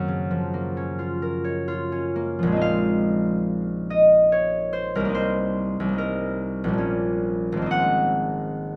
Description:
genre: classical, solo harp piece.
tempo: 62-73 BPM.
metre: 3/4.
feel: rubato.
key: Bb minor.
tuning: A4 = 439 Hz.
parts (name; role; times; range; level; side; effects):
concert harp; solo; 0.0-8.8 s; Ab1 to Gb5; -23 LUFS; equal; none.
room: light reverb.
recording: none.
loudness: -23 LUFS.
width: mono.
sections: 0.0-2.6 A section; 2.6-8.8 B section.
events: none.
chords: 0.0 Gbmaj7; 2.6 Bbm11; 5.2 Cm7; 6.8 Bbm6; 7.7 Ab9.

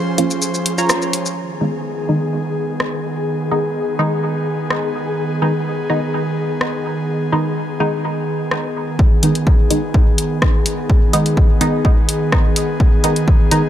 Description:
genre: dub techno.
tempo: 126 BPM.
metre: 4/4.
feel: straight.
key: G# dorian.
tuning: A4 = 440 Hz.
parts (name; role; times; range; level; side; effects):
airy breathy pad; sustained chords; 0.0-13.7 s; D#3 to B#4; -21 LUFS; equal; chorus, sidechain pumping.
flickering grainy texture; texture; 0.0-9.0 s; G#4; -31 LUFS; left 1 dB; built-in reverb, sidechain pumping.
filtered dub chord stab; stabs; 0.2-13.6 s; D#3 to E#4; -21 LUFS; equal; chorus, phaser, sidechain pumping, dub echo.
punchy analog drum machine; drums; 0.2-13.6 s; hi-hat, rim click, shaker; -20 LUFS; left 1 dB; none.
warbly dusty pluck; riff; 0.8-0.9 s; E#4 to A#5; -25 LUFS; right 2 dB; chorus, sidechain pumping, dub echo.
electronic kick drum; drums; 9.0-13.4 s; none; -13 LUFS; equal; none.
room: light reverb.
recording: none.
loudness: -15 LUFS.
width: side -11 dB against mid.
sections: 0.0-1.4 A section; 1.4-9.0 B section; 9.0-13.7 A section.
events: break 0.0-1.4.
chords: 0.0 A#m; 1.4 G#m.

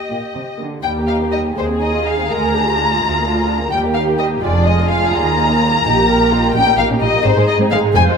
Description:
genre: quick classical-period movement for string orchestra.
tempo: 85 BPM (dotted quarters).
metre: 6/8.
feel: rubato.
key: Eb major.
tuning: A4 = 440 Hz.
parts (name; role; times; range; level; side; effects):
muted symphonic violin section; melody; 0.0-8.0 s; C5 to Bb5; -18 LUFS; left 4 dB; none.
muted symphonic violin section; second line; 0.0-8.2 s; G3 to Ab4; -21 LUFS; left 1 dB; none.
muted symphonic viola section; accompaniment; 0.0-8.2 s; Bb3 to C5; -21 LUFS; right 3 dB; none.
muted symphonic cello section; bass; 0.1-8.1 s; D2 to D3; -20 LUFS; right 2 dB; none.
muted symphonic double bass section; bass; 0.8-8.0 s; F1 to Eb2; -21 LUFS; right 3 dB; none.
room: wet recital hall reverb, RT60 1.5 s.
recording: faint mains hum.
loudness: -13 LUFS.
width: side -6 dB against mid.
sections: 0.8-8.2 A section.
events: none.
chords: 0.0 Eb; 1.6 Fm7/Eb; 2.3 Bb7/D; 3.7 Eb; 4.4 Ddim/F; 5.1 Eb; 6.5 Eb/Bb; 7.3 Ab.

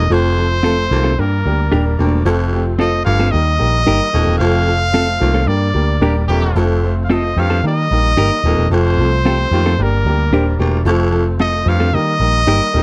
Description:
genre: soul.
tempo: 112 BPM.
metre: 4/4.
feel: straight.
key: unclear.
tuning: A4 = 440 Hz.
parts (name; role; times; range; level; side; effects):
bright trumpet; melody; 0.0-12.8 s; Bb4 to F5; -21 LUFS; equal; none.
overdriven tonewheel organ; sustained chords; 0.0-12.8 s; Eb3 to D4; -33 LUFS; equal; none.
raspy baritone saxophone; riff; 0.0-12.8 s; D2 to G2; -23 LUFS; equal; none.
vintage muted picked electric bass; bass; 0.0-12.8 s; Eb1 to Eb3; -18 LUFS; equal; none.
warm upright piano; accompaniment; 0.1-12.8 s; F3 to C5; -23 LUFS; equal; none.
clean electric guitar; stabs; 0.6-12.6 s; C4 to Bb4; -22 LUFS; equal; spring reverb.
clear horn section; second line; 6.0-6.6 s; C3 to G4; -26 LUFS; equal; none.
room: light reverb.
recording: none.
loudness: -15 LUFS.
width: mono.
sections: 0.0-12.8 A section.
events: band accent 4.4-6.6.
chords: 0.1 F; 1.2 Gm; 2.3 F; 3.3 Eb; 4.4 F; 5.5 Gm; 6.6 F; 7.6 Eb; 8.7 F; 9.8 Gm; 10.9 F; 11.9 Eb.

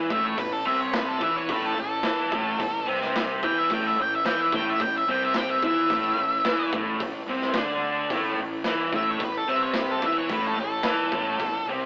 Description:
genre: garage rock duo or trio.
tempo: 109 BPM.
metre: 4/4.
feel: straight.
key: unclear.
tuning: A4 = 440 Hz.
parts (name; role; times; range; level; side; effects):
raw garage guitar; riff; 0.0-11.9 s; A2 to E4; -26 LUFS; equal; overdrive.
fuzz fingered electric bass; bass; 0.0-11.9 s; A1 to E2; -36 LUFS; equal; overdrive.
octave-fuzz lead guitar; melody; 0.1-11.7 s; A4 to G5; -25 LUFS; equal; distortion.
raw garage drum kit; drums; 0.1-11.5 s; hi-hat, kick drum, snare drum; -31 LUFS; equal; none.
room: moderate stone room reverb, RT60 1.2 s.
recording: rough rehearsal-room recording, AM radio sound.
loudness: -22 LUFS.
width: side -26 dB against mid.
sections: 0.0-11.9 A section.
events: none.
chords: 0.0 A5.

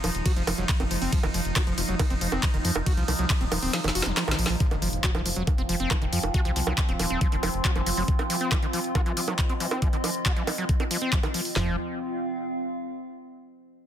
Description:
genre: psychedelic trance.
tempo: 138 BPM.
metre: 4/4.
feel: straight.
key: unclear.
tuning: A4 = 437 Hz.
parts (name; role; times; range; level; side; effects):
overtone-sweeping drone; sustained chords; 0.0-11.6 s; F3 to Eb4; -33 LUFS; right 2 dB; chorus, built-in reverb, sidechain pumping.
screaming distorted acid line; riff; 0.0-11.8 s; Eb3 to Gb4; -31 LUFS; equal; distortion, chorus, auto-pan, cassette tape, sidechain pumping, dub echo.
round analog bass; bass; 0.0-8.0, 11.6-11.8 s; Eb1 to F2; -30 LUFS; equal; none.
drum and bass drum kit; drums; 0.0-11.5 s; bongos, handclaps, hi-hat, ride cymbal, snare drum; -29 LUFS; right 2 dB; overdrive.
drum and bass drum kit; drums; 0.3-11.7 s; handclaps, kick drum, snare drum, toms; -25 LUFS; equal; overdrive.
impact; sound effects; 4.6-6.3 s; none; -36 LUFS; left 1 dB; none.
warbly tape-like pad; texture; 5.4-13.3 s; C4 to F5; -34 LUFS; equal; chorus, built-in reverb, sidechain pumping.
room: little or no reverb.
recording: dense, heavily limited modern master.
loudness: -23 LUFS.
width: side -10 dB against mid.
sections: 0.0-4.6 A section; 4.6-11.6 B section; 11.6-13.3 C section.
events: drop 0.0-4.6; kick drops out 3.7-4.6; drum fill 3.7-4.6; impact 4.6-6.3.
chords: 0.0 F5.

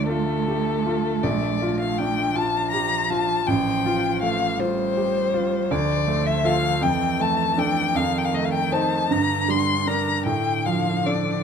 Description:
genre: classical, slow romantic movement for piano trio.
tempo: 53 BPM (dotted quarters).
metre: 6/8.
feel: rubato.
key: F major, D minor from 5.7 s.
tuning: A4 = 441 Hz.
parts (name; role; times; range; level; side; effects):
warm violin; melody; 0.0-11.4 s; A4 to C6; -23 LUFS; left 6 dB; none.
rich cello; second line; 0.0-11.4 s; D3 to A3; -29 LUFS; right 10 dB; none.
clear grand piano; accompaniment; 0.0-11.4 s; A1 to C5; -24 LUFS; right 2 dB; none.
room: moderate large studio reverb, RT60 1.0 s.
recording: none.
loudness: -20 LUFS.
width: side -7 dB against mid.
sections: 0.0-11.4 A section.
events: none.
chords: 0.0 Dm; 1.2 Bbmaj7; 3.5 F/A; 5.7 Dm; 6.8 Dm/F; 8.0 F7; 9.1 Gm; 10.3 Dm/A.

